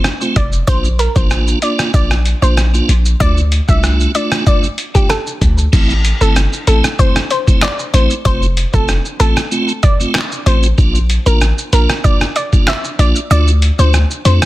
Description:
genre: dancehall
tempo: 95 BPM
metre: 4/4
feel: straight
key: A phrygian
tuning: A4 = 440 Hz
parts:
  - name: tonewheel organ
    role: accompaniment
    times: 0.0-14.5 s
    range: A3 to F4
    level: -20 LUFS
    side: right 2 dB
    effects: overdrive, chorus vibrato, stopped rotary speaker, sidechain pumping
  - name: trip hop sampler-style drum kit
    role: drums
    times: 0.0-14.5 s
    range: crash cymbal, handclaps, hi-hat, kick drum, rim click, shaker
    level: -15 LUFS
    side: equal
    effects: soft clipping on snare
  - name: analog pluck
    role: melody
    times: 0.4-14.4 s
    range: G4 to E5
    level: -20 LUFS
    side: equal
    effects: chorus, tape echo
  - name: warm 808-style bass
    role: bass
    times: 0.4-14.4 s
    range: F1 to F2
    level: -12 LUFS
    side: equal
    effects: none
room: digital ambience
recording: dense, heavily limited modern master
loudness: -11 LUFS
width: side -16 dB against mid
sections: 0.0-5.7 A section; 5.7-14.5 B section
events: kick muted 13.3-14.5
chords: 0.0 F; 0.7 Bb; 3.2 Dm; 5.7 Am; 8.3 F; 10.8 Bb; 13.3 Dm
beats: 0.04 | 0.68 1.31 1.94 2.57 | 3.20 3.83 4.46 5.10 | 5.73 6.36 6.99 7.62 | 8.26 8.89 9.52 10.15 | 10.78 11.41 12.04 12.68 | 13.31 13.94

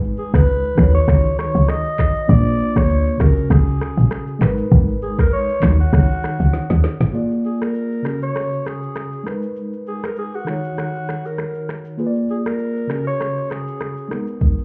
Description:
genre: afrobeats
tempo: 99 BPM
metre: 4/4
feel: swing 55% on 16ths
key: Eb minor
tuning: A4 = 440 Hz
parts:
  - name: mellow tine electric piano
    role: accompaniment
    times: 0.0-14.6 s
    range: Db3 to D5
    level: -25 LUFS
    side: equal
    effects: none
  - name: woody log drum bass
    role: bass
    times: 0.0-7.1 s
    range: Ab1 to Eb2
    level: -18 LUFS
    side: equal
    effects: none
  - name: deep house drum kit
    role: drums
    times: 0.0-14.6 s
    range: finger snaps, handclaps, kick drum, rim click, shaker, snare drum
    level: -21 LUFS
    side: equal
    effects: none
  - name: growling alto saxophone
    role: melody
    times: 0.2-14.1 s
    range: Gb4 to Eb5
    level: -27 LUFS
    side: equal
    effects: tape echo
room: little or no reverb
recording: heard muffled through a wall, club ambience, EQ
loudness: -19 LUFS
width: mono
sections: 0.0-7.1 A section; 7.1-14.6 B section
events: drum fill 6.5-7.1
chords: 0.0 Abm; 0.8 Ebm7; 2.3 Bb7; 3.2 Dbsus4; 4.4 Abmadd9; 5.6 Ebm7; 7.1 Bb7; 8.0 Dbsus4; 9.3 Abmadd9; 10.5 Ebm7; 12.0 Bb7; 12.9 Dbsus4; 14.1 Abmadd9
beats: 0.47 1.08 1.69 | 2.29 2.90 3.50 4.11 | 4.72 5.32 5.93 6.53 | 7.14 7.75 8.35 8.96 | 9.56 10.17 10.78 11.38 | 11.99 12.60 13.20 13.81 | 14.41

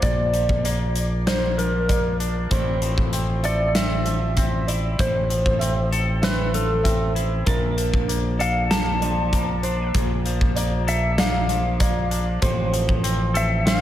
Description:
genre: post-rock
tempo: 97 BPM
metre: 4/4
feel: straight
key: unclear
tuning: A4 = 445 Hz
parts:
  - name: clean lap steel guitar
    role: melody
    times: 0.0-13.8 s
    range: A4 to A5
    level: -26 LUFS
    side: equal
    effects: slapback echo, digital delay
  - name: pedal steel guitar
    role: sustained chords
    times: 0.0-13.8 s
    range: F3 to A5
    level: -35 LUFS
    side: right 1 dB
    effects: wide subtle chorus
  - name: felt-muted upright piano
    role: arpeggios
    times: 0.0-13.8 s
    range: Bb4 to E6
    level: -31 LUFS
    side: right 3 dB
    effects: slapback echo, digital delay
  - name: twangy electric guitar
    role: arpeggios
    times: 0.0-13.8 s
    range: A2 to A4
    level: -29 LUFS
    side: left 3 dB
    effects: slapback echo, digital delay
  - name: growling fingered electric bass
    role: bass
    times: 0.0-13.8 s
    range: A1 to Bb1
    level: -24 LUFS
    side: equal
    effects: overdrive
  - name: big rock drum kit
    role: drums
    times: 0.0-13.8 s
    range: hi-hat, kick drum, snare drum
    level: -24 LUFS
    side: equal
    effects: none
room: moderate lush hall reverb, RT60 2.7 s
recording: big arena sound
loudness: -19 LUFS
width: side -12 dB against mid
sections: 0.0-13.8 A section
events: none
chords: 0.0 Bbmaj7; 2.5 Fmaj7/A; 7.5 Bbmaj7; 12.4 Fmaj7/A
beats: | 0.03 0.65 1.27 1.89 | 2.51 3.13 3.75 4.37 | 4.99 5.61 6.23 6.85 | 7.47 8.09 8.71 9.32 | 9.94 10.56 11.18 11.80 | 12.42 13.04 13.66

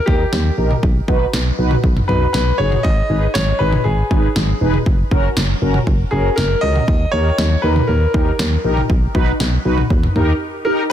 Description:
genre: synth-pop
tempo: 119 BPM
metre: 4/4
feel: straight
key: unclear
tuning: A4 = 441 Hz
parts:
  - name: clear baby grand piano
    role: melody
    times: 0.0-10.9 s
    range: G4 to D#5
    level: -21 LUFS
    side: left 1 dB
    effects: ping-pong delay
  - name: mellow synth brass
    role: accompaniment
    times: 0.1-10.8 s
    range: C#4 to B4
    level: -21 LUFS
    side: equal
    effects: chorus, phaser
  - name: solid FM bass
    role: bass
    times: 0.1-10.3 s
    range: E1 to D#2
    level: -17 LUFS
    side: equal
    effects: none
  - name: punchy analog drum machine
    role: drums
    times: 0.1-10.3 s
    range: kick drum, snare drum, toms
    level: -19 LUFS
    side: equal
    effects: none
room: light reverb, digital ambience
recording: dense, heavily limited modern master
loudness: -14 LUFS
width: side -10 dB against mid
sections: 0.0-10.9 A section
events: break 10.4-10.9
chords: 0.0 D#; 0.8 B; 2.8 G#m; 4.9 F#; 6.9 D#; 8.9 B; 9.9 D#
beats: 0.33 | 0.83 1.33 1.84 2.34 | 2.85 3.35 3.86 4.36 | 4.86 5.37 5.87 6.38 | 6.88 7.38 7.89 8.39 | 8.90 9.40 9.91 10.41 | 10.91

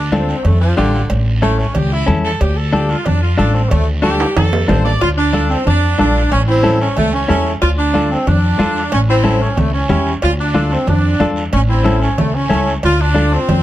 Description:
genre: latin, cumbia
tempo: 184 BPM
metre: 4/4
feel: straight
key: D harmonic minor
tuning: A4 = 439 Hz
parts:
  - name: clear saxophone section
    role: melody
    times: 0.0-13.6 s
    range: D3 to D5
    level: -19 LUFS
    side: right 1 dB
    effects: none
  - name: upright bass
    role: bass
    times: 0.0-13.6 s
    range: A1 to F2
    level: -16 LUFS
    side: equal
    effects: none
  - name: direct-recorded clean electric guitar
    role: accompaniment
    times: 0.1-13.4 s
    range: C#4 to A4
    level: -20 LUFS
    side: left 2 dB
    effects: none
  - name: congas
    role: percussion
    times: 0.1-13.6 s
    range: none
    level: -20 LUFS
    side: left 1 dB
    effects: none
  - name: guiro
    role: percussion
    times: 0.1-13.6 s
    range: none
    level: -31 LUFS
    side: right 5 dB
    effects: none
  - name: cowbell and timbales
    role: percussion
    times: 0.4-13.6 s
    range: none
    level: -24 LUFS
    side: right 4 dB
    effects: none
  - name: breathy clarinet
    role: second line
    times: 5.0-13.6 s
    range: A3 to F4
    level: -21 LUFS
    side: right 2 dB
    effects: none
room: light reverb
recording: dark, warm production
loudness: -12 LUFS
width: side -14 dB against mid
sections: 0.0-5.0 A section; 5.0-13.6 B section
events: saxophone section solo 0.0-5.0; drum fill 4.2-5.0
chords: 0.0 Dm; 1.1 A; 2.4 Dm; 6.3 A; 7.6 Dm; 8.9 A7; 10.2 Dm; 11.5 A; 12.8 Dm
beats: 0.12 0.45 0.78 | 1.10 1.43 1.75 2.08 | 2.41 2.73 3.06 3.38 | 3.71 4.04 4.36 4.69 | 5.01 5.34 5.67 5.99 | 6.32 6.64 6.97 7.29 | 7.62 7.95 8.27 8.60 | 8.92 9.25 9.57 9.90 | 10.23 10.55 10.88 11.20 | 11.53 11.85 12.18 12.51 | 12.83 13.16 13.48

